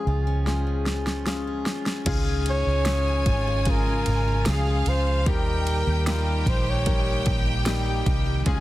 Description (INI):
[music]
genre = pop ballad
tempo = 75 BPM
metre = 4/4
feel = straight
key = unclear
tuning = A4 = 440 Hz
[part]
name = mellow flugelhorn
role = melody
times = 0.0-7.5 s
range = Ab4 to Db5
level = -29 LUFS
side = equal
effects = none
[part]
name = warm concert grand piano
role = accompaniment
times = 0.0-8.6 s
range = Ab2 to G5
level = -31 LUFS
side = left 5 dB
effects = none
[part]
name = picked steel-string acoustic guitar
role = arpeggios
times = 0.0-8.6 s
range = Db3 to Ab4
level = -36 LUFS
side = right 8 dB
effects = none
[part]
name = vintage muted fingered electric bass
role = bass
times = 0.1-8.6 s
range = Ab1 to Eb2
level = -25 LUFS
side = equal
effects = none
[part]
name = deep house drum kit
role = drums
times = 0.5-8.6 s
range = crash cymbal, kick drum, ride cymbal, snare drum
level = -27 LUFS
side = equal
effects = none
[part]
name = warm studio violin section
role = second line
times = 2.1-8.6 s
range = F5 to Ab5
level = -32 LUFS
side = equal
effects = none
[part]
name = dark studio string section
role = sustained chords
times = 2.1-8.6 s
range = Db3 to G4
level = -36 LUFS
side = equal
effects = none
[sound]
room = small room reverb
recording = dense, heavily limited modern master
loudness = -21 LUFS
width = side -16 dB against mid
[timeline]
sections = 0.0-2.1 A section; 2.1-8.6 B section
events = drum fill 0.5-2.1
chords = 0.0 Db; 5.3 Eb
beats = 0.46 1.26 | 2.06 2.86 3.66 4.46 | 5.26 6.06 6.86 7.66 | 8.46